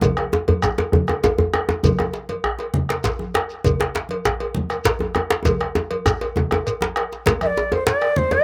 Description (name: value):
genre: west african traditional, West African drum ensemble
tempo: 132 BPM (dotted quarters)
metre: 12/8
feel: straight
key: unclear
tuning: A4 = 440 Hz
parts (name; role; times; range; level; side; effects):
- bombo; percussion; 0.0-8.4 s; none; -28 LUFS; equal; none
- congas; percussion; 0.0-8.4 s; none; -29 LUFS; equal; none
- cowbell; percussion; 0.0-8.4 s; none; -30 LUFS; equal; slapback echo
- djembe; percussion; 0.0-7.7 s; none; -30 LUFS; equal; slapback echo
- djembe; percussion; 0.0-8.4 s; none; -23 LUFS; equal; none
- shekere; percussion; 0.0-8.0 s; none; -29 LUFS; equal; none
- bright reedy bansuri; melody; 7.4-8.4 s; C5 to E5; -21 LUFS; equal; none
room: light reverb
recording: recorded outdoors, with no room sound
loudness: -21 LUFS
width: mono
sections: 0.0-7.3 A section; 7.3-8.4 B section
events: drum fill 5.5-7.3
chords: none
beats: | 0.02 0.48 0.93 1.38 | 1.84 2.29 2.74 3.20 | 3.65 4.10 4.55 5.01 | 5.46 5.91 6.37 6.82 | 7.27 7.72 8.17